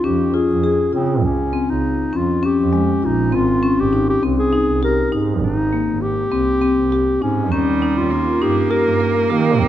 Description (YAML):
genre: contemporary instrumental, chamber music in an uneven meter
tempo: 201 BPM (eighths)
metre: 7/8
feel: straight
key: Ab major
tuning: A4 = 440 Hz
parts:
  - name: mellow clarinet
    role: melody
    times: 0.0-9.7 s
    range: Bb3 to Bb4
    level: -21 LUFS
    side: left 1 dB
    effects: none
  - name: marimba with medium mallets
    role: arpeggios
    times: 0.0-9.7 s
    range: Ab3 to Bb4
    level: -19 LUFS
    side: left 3 dB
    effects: none
  - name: rich double bass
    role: bass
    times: 0.0-9.7 s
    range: Ab1 to Eb3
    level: -22 LUFS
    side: right 4 dB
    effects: none
  - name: rich cello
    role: second line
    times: 7.5-9.7 s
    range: G3 to Bb3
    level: -21 LUFS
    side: right 7 dB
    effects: none
room: moderate concert hall reverb, RT60 1.9 s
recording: close, detailed microphones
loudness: -15 LUFS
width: side -12 dB against mid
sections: 0.0-9.7 A section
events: none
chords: 0.0 Db; 3.3 Abmaj7; 7.5 Eb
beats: 0.05 0.35 0.65 0.94 | 1.24 1.54 1.84 2.14 2.44 2.74 3.04 | 3.33 3.63 3.93 4.23 4.53 4.83 5.13 | 5.42 5.72 6.02 6.32 6.62 6.92 7.21 | 7.51 7.81 8.11 8.41 8.71 9.01 9.30 | 9.60